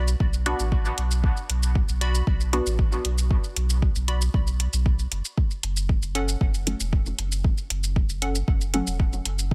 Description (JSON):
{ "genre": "dub techno", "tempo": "116 BPM", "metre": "4/4", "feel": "straight", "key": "unclear", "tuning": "A4 = 439 Hz", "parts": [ { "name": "wavetable chord stab", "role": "riff", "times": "0.0-9.0 s", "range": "C#4 to B5", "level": "-37 LUFS", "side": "equal", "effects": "phaser, sidechain pumping, dub echo" }, { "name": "pure sine sub bass", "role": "bass", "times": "0.0-9.5 s", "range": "E1 to B1", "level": "-28 LUFS", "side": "equal", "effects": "sidechain pumping" }, { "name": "electronic shaker and hi-hat", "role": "drums", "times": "0.1-9.5 s", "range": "none", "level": "-32 LUFS", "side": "equal", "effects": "small room ambience" }, { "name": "electronic kick drum", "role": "drums", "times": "0.2-9.5 s", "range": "none", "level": "-25 LUFS", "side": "equal", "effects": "small room ambience" }, { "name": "filtered dub chord stab", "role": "stabs", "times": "0.5-2.7, 6.7-8.9 s", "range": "F#3 to F#4", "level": "-33 LUFS", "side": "equal", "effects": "chorus, phaser, sidechain pumping, dub echo" } ], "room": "little or no reverb", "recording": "none", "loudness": "-24 LUFS", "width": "mono", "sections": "0.0-9.5 A section", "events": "none", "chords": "0.0 Bm; 5.4 F#m", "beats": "0.20 0.72 | 1.24 1.75 2.27 2.79 | 3.31 3.82 4.34 4.86 | 5.38 5.89 6.41 6.93 | 7.44 7.96 8.48 9.00 | 9.51" }